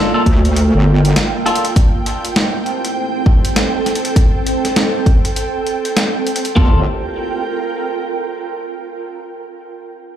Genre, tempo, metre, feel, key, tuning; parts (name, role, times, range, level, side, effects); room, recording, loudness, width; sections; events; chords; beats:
glitch hop; 100 BPM; 4/4; swing 62% on 16ths; G dorian; A4 = 440 Hz
dark analog pad; sustained chords; 0.0-6.8 s; A3 to D5; -29 LUFS; right 2 dB; chorus, phaser, vintage 12-bit sampler grit, sidechain pumping
clean electric guitar; stabs; 0.0-1.6, 6.6-6.8 s; Bb3 to A4; -22 LUFS; left 1 dB; vintage 12-bit sampler grit, sidechain pumping, dub echo
ethereal airy pad; texture; 0.0-8.9 s; Bb3 to G5; -20 LUFS; right 2 dB; ensemble chorus, built-in reverb, sidechain pumping
wobble bass; bass; 0.3-1.1, 6.6-6.8 s; G1 to D2; -12 LUFS; equal; chorus, tube saturation
boom bap sampler-style drum kit; drums; 0.3-6.5 s; hi-hat, snare drum; -19 LUFS; equal
pop drum kit; drums; 0.3-6.7 s; kick drum, toms; -12 LUFS; equal
light reverb; played on a big sound system in a bare room, large studio reverb; -13 LUFS; side -10 dB against mid
0.0-6.6 A section; 6.6-9.0 B section
filter sweep on analog synth pad 0.0-6.6
0.0 Gm7; 1.8 Am7; 6.6 Gm7
0.56 1.16 | 1.76 2.36 2.96 3.56 | 4.16 4.76 5.36 5.96 | 6.56 7.16 7.76 8.36